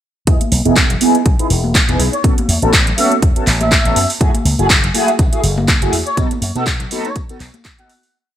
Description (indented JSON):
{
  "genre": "filtered disco house",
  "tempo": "122 BPM",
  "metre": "4/4",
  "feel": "swing 56% on 16ths",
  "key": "E major",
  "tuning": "A4 = 445 Hz",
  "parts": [
    { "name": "mellow synth brass", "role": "accompaniment", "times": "0.3-7.9 s", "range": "A3 to A4", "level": "-18 LUFS", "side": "right 1 dB", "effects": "chorus, phaser, sidechain pumping, low-pass filter" },
    { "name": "slap bass with an envelope filter", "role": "bass", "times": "0.3-7.5 s", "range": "E1 to B2", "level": "-18 LUFS", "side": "equal", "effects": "sidechain pumping, low-pass filter" },
    { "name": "electronic kick drum", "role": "drums", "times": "0.3-7.8 s", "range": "none", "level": "-15 LUFS", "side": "equal", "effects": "studio reverb" },
    { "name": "house drum kit", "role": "drums", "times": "0.3-8.1 s", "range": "handclaps, hi-hat", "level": "-17 LUFS", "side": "right 1 dB", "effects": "sidechain pumping on hats, studio reverb" },
    { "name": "tambourine and congas", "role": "percussion", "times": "0.3-8.1 s", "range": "none", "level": "-25 LUFS", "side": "left 3 dB", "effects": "sidechain pumping on perc, low-pass filter on perc" },
    { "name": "muted trumpet section", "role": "melody", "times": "2.1-8.1 s", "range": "C#5 to F#5", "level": "-20 LUFS", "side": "equal", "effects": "sidechain pumping, low-pass filter" }
  ],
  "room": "digital ambience",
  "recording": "none",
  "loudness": "-12 LUFS",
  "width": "side -11 dB against mid",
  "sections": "0.3-8.1 groove",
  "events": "filter sweep 0.3-8.1; fade-out 5.5-8.1",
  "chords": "0.3 Emaj7; 2.2 A69; 4.2 F#m9; 6.2 B7",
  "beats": "| 0.27 0.77 1.26 1.75 | 2.24 2.73 3.23 3.72 | 4.21 4.70 5.19 5.68 | 6.18 6.67 7.16 7.65"
}